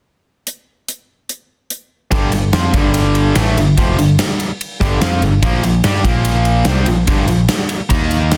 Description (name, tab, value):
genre	hard rock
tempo	145 BPM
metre	4/4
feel	straight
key	G minor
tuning	A4 = 440 Hz
part	gated 80s drum kit	drums	0.5-8.4 s	hi-hat, kick drum, ride cymbal, snare drum	-20 LUFS	equal	none
part	distorted electric guitar	riff	2.1-8.4 s	F2 to G4	-18 LUFS	equal	overdrive
part	picked electric bass	bass	2.1-8.4 s	F1 to G2	-19 LUFS	equal	none
room	light reverb, small room reverb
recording	dense, heavily limited modern master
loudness	-15 LUFS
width	mono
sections	0.5-2.1 A section; 2.1-8.4 B section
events	none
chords	0.5 N.C.; 2.1 G5; 5.4 Bb5